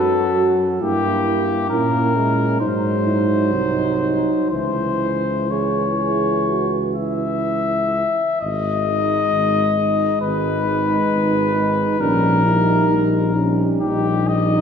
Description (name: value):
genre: classical, hymn-like piece for brass band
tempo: 59-68 BPM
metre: 4/4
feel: rubato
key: C# minor, G# minor from 8.4 s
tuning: A4 = 440 Hz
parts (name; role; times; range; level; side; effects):
- warm cornet; melody; 0.0-14.6 s; G4 to E5; -21 LUFS; left 4 dB; none
- dark French horn section; second line; 0.0-14.6 s; D#4 to G#4; -24 LUFS; right 7 dB; none
- clear trombone; accompaniment; 0.0-14.6 s; E3 to Bb3; -26 LUFS; right 3 dB; none
- mellow euphonium; accompaniment; 0.0-14.6 s; Db4 to F#4; -25 LUFS; left 3 dB; none
- warm tuba; bass; 0.0-14.6 s; G#1 to Bb2; -22 LUFS; equal; none
room: wet concert hall reverb, RT60 2.4 s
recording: heard from further back in the room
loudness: -16 LUFS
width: side -7 dB against mid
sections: 0.0-8.4 A section; 8.4-14.6 B section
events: none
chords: 0.0 D#dim/F# (rootless); 0.8 Gdim7; 2.6 G#7; 4.5 C#m; 8.4 G#m; 12.0 D#/A#